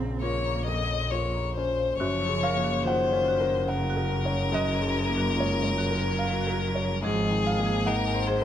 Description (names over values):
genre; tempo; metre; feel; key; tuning
neoclassical piano and strings; 72 BPM; 3/4; rubato; unclear; A4 = 443 Hz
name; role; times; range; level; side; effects
rich cello; second line; 0.0-8.4 s; Db3 to C4; -34 LUFS; right 4 dB; none
felt-muted upright piano; accompaniment; 0.0-8.4 s; Bb1 to Gb5; -30 LUFS; right 1 dB; none
marimba with hard mallets; arpeggios; 0.0-8.4 s; Gb4 to Bb5; -37 LUFS; right 6 dB; slapback echo
clear double bass; bass; 0.0-8.4 s; Gb1 to Bb1; -30 LUFS; equal; none
clear violin; melody; 0.2-8.4 s; Ab4 to Eb5; -28 LUFS; left 5 dB; none
room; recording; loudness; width
moderate recital hall reverb, RT60 1.6 s; none; -24 LUFS; side -10 dB against mid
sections
0.0-2.0 A section; 2.0-8.4 B section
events
none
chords
0.0 Bbmadd9; 2.0 Gbmaj7; 7.0 Abadd9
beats
0.23 1.12 | 2.00 2.85 3.70 | 4.54 5.37 6.20 | 7.04 7.87